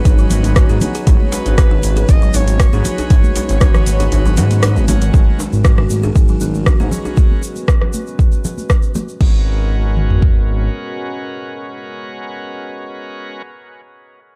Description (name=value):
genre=afro house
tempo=118 BPM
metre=4/4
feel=straight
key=G# minor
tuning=A4 = 440 Hz
part: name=expressive portamento lead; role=melody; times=0.0-4.8 s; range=B4 to D#5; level=-29 LUFS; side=equal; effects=subtle chorus, dub echo
part: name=dark analog pad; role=sustained chords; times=0.0-13.4 s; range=G#3 to C#5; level=-31 LUFS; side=equal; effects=chorus, sidechain pumping
part: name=bright tonewheel organ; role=stabs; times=0.0-13.4 s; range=F#3 to B4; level=-31 LUFS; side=equal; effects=overdrive, slow rotary speaker, sidechain pumping, dub echo
part: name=djembe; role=percussion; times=0.0-7.1 s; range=none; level=-28 LUFS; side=equal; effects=none
part: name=buzzing kalimba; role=arpeggios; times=0.1-9.4 s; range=D#3 to G#4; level=-27 LUFS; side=equal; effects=sidechain pumping, dub echo
part: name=smooth synth bass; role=bass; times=0.1-10.7 s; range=G#1 to G#2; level=-18 LUFS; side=equal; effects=sidechain pumping
part: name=afro-pop drum kit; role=drums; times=0.1-10.3 s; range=kick drum, toms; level=-14 LUFS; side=equal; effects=overdrive
part: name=afro-pop drum kit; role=drums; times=0.1-9.3 s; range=crash cymbal, hi-hat, rim click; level=-25 LUFS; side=equal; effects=overdrive
part: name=tube shaker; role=percussion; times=0.1-9.2 s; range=none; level=-34 LUFS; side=equal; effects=none
part: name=congas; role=percussion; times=0.3-9.1 s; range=none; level=-27 LUFS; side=equal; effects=none
room=digital ambience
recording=dark, warm production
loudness=-14 LUFS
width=mono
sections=0.0-5.1 A section; 5.1-9.2 B section; 9.2-13.3 C section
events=drop 0.0-5.1; kick drops out 4.1-5.1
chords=0.0 G#m11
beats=0.05 0.56 | 1.07 1.58 2.09 2.60 | 3.10 3.61 4.12 4.63 | 5.14 5.65 6.16 6.66 | 7.17 7.68 8.19 8.70 | 9.21 9.71 10.22 10.73 | 11.24 11.75 12.26 12.77